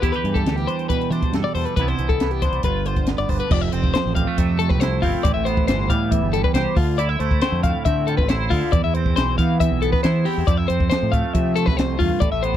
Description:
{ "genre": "math rock and midwest emo", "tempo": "138 BPM", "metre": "4/4", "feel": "straight", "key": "unclear", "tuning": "A4 = 439 Hz", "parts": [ { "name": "twangy electric guitar", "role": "accompaniment", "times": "0.0-12.6 s", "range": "E2 to A4", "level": "-25 LUFS", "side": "right 10 dB", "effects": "analog chorus" }, { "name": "twelve-string electric guitar", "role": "arpeggios", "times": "0.0-12.6 s", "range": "F4 to F5", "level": "-24 LUFS", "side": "left 7 dB", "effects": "none" }, { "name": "growling fingered electric bass", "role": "bass", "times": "0.0-12.6 s", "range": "F1 to F3", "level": "-23 LUFS", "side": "equal", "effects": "overdrive" }, { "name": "compact cocktail drum kit", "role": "drums", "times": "0.0-12.6 s", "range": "crash cymbal, hi-hat, kick drum, snare drum", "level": "-22 LUFS", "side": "equal", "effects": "none" } ], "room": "little or no reverb", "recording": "dry, close 1970s-style studio recording", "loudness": "-18 LUFS", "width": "side -11 dB against mid", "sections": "0.0-3.5 A section; 3.5-12.6 B section", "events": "none", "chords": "0.0 Em7; 1.8 Cmaj9; 2.6 G7; 3.5 Fmaj7; 5.3 Am9; 6.8 Dm9; 8.7 Cmaj7; 10.5 Fmaj7", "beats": "| 0.03 0.46 0.90 1.33 | 1.77 2.21 2.64 3.08 | 3.51 3.95 4.38 4.82 | 5.25 5.69 6.12 6.55 | 6.99 7.43 7.86 8.30 | 8.73 9.17 9.60 10.04 | 10.47 10.91 11.34 11.78 | 12.21" }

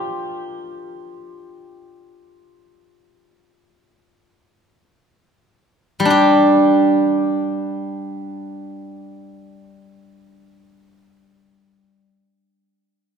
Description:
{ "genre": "chinese traditional, Chinese solo plucked strings", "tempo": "free time", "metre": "none", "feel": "none", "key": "G yu mode", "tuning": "A4 = 440 Hz", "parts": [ { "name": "steel-string zither", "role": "solo", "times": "0.0-12.1 s", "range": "G3 to D5", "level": "-17 LUFS", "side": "equal", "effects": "none" } ], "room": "wet church reverb, RT60 3.4 s", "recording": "recorded in a church or concert hall", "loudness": "-15 LUFS", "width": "side -7 dB against mid", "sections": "0.0-6.1 A section; 6.1-12.1 B section", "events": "slowing down 0.0-6.1", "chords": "none", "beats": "free time" }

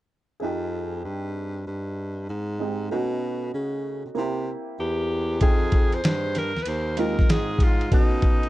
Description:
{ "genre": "hip hop, jazz-hop", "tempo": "96 BPM", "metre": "4/4", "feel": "swing 65% on 16ths", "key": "F minor", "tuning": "A4 = 441 Hz", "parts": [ { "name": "warm upright piano", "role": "accompaniment", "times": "0.4-8.5 s", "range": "Ab3 to G5", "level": "-31 LUFS", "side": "right 3 dB", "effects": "none" }, { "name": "warm baritone saxophone", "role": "bass", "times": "0.4-8.5 s", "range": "Eb2 to C#3", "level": "-29 LUFS", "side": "equal", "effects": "none" }, { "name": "bright alto saxophone", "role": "melody", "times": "4.8-8.5 s", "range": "D#4 to C5", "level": "-27 LUFS", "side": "equal", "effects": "none" }, { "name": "dusty soul sampler-style drum kit", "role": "drums", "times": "5.4-8.5 s", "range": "hi-hat, kick drum, ride cymbal, snare drum", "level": "-20 LUFS", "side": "equal", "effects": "none" } ], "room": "little or no reverb", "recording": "dark, warm production", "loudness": "-22 LUFS", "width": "side -16 dB against mid", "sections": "0.4-5.4 A section; 5.4-8.5 B section", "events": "none", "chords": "0.4 Fm9; 2.9 B9; 4.2 C7; 5.4 Fm9; 7.9 B9", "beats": "| 0.41 1.04 1.66 2.29 | 2.91 3.54 4.16 4.79 | 5.41 6.04 6.66 7.29 | 7.91" }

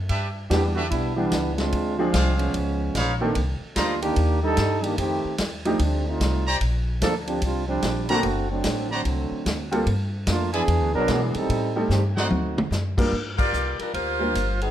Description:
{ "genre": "jazz, big band swing", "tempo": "148 BPM", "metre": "4/4", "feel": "swing 64% on 8ths", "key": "G minor", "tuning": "A4 = 445 Hz", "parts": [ { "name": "upright bass", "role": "bass", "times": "0.0-14.7 s", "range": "F#1 to B2", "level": "-26 LUFS", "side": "equal", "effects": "none" }, { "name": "brilliant trumpet section", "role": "stabs", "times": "0.1-3.9, 6.5-12.3 s", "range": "D4 to Bb5", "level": "-28 LUFS", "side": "equal", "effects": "none" }, { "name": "vintage drum kit", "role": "drums", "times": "0.1-14.7 s", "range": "crash cymbal, hi-hat, kick drum, ride cymbal, snare drum, toms", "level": "-29 LUFS", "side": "equal", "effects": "none" }, { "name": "warm trombone section", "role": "second line", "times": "0.5-12.7 s", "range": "D3 to Bb4", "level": "-25 LUFS", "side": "right 2 dB", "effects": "none" }, { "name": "clear baby grand piano", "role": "accompaniment", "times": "0.5-14.3 s", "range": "D#3 to Bb4", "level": "-26 LUFS", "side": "right 1 dB", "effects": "none" }, { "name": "warm saxophone section", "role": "melody", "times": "13.4-14.7 s", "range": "F#3 to D5", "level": "-25 LUFS", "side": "equal", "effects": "none" } ], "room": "moderate large studio reverb, RT60 1.1 s", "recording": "dark, warm production", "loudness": "-21 LUFS", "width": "side -11 dB against mid", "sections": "0.1-13.1 A section; 13.1-14.7 B section", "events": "trombone section solo 0.1-13.1; drum fill 11.9-12.7; band accent 13.3", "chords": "0.1 G6; 1.7 Dm7b5; 2.5 C#9; 3.4 Cm9; 5.0 F13; 6.6 Bb69; 8.2 D7b13; 9.9 Gm9; 10.7 E7; 11.5 Am7b5; 12.3 D7b9; 13.1 Gm7", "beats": "| 0.10 0.51 0.92 1.32 | 1.73 2.14 2.54 2.95 | 3.36 3.77 4.17 4.58 | 4.99 5.39 5.80 6.21 | 6.61 7.02 7.43 7.83 | 8.24 8.65 9.05 9.46 | 9.87 10.27 10.68 11.09 | 11.49 11.90 12.31 12.72 | 13.12 13.53 13.94 14.35" }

